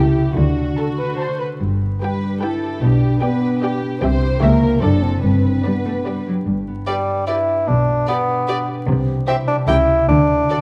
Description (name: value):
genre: cinematic, playful, whimsical film cue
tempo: 148 BPM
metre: 3/4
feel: straight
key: G major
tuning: A4 = 440 Hz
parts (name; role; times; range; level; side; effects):
- warm studio violin section; melody; 0.0-10.6 s; D5 to A5; -31 LUFS; equal; none
- warm studio violin section; second line; 0.0-10.6 s; F#4 to C5; -31 LUFS; equal; none
- dark studio viola section; accompaniment; 0.0-10.6 s; F#4 to E5; -31 LUFS; equal; none
- mellow French horn section; sustained chords; 0.0-6.3 s; G3 to E4; -23 LUFS; equal; none
- concert harp; arpeggios; 0.0-10.6 s; F#2 to B4; -26 LUFS; equal; none
- warm studio cello section; bass; 0.0-10.4 s; F#2 to A3; -24 LUFS; equal; none
- warm studio double bass section; bass; 0.0-10.4 s; F#1 to D2; -23 LUFS; equal; none
- warm bassoon; accompaniment; 6.9-10.6 s; G3 to E4; -20 LUFS; equal; none
room: wet scoring stage reverb, RT60 1.7 s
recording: vinyl crackle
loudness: -18 LUFS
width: mono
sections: 0.0-6.5 A section; 6.5-10.6 A section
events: none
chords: 0.4 D; 1.6 G; 2.8 G/B; 4.0 C; 4.4 C#dim7; 4.8 D7/F#; 5.2 G; 7.7 G/B; 8.9 C; 9.7 C#dim; 10.1 D